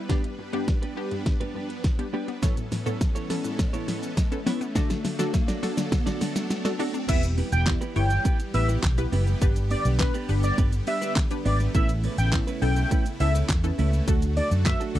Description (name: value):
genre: dance-pop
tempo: 103 BPM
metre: 4/4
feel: straight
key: E dorian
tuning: A4 = 440 Hz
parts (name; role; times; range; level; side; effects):
- supersaw chords; sustained chords; 0.0-15.0 s; C#3 to B4; -35 LUFS; equal; sidechain pumping
- wide unison pluck; arpeggios; 0.0-7.1 s; G2 to D4; -36 LUFS; left 4 dB; sidechain pumping, tape echo
- riser; sound effects; 1.5-7.1 s; none; -37 LUFS; left 1 dB; none
- punchy chord stab; accompaniment; 0.1-15.0 s; A3 to D5; -32 LUFS; left 2 dB; chorus, sidechain pumping
- clean electric guitar; riff; 0.1-15.0 s; A3 to D5; -33 LUFS; right 6 dB; lush chorus
- pop drum kit; drums; 0.1-15.0 s; crash cymbal, handclaps, hi-hat, kick drum, shaker, snare drum; -25 LUFS; equal; none
- octave-doubled lead; melody; 7.1-14.8 s; B4 to G5; -30 LUFS; equal; chorus, sidechain pumping, tape echo
- vintage muted fingered electric bass; bass; 7.1-15.0 s; E1 to F#2; -24 LUFS; equal; sidechain pumping
room: little or no reverb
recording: dry, close 1970s-style studio recording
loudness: -22 LUFS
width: side -13 dB against mid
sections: 0.0-7.1 A section; 7.1-15.0 B section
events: build-up 0.0-7.1; drum fill 0.0-7.1; riser 1.5-7.1; drop 7.1-15.0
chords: 0.1 G; 2.4 Aadd9; 4.8 D; 7.1 Em; 9.4 G; 11.7 Aadd9; 14.1 D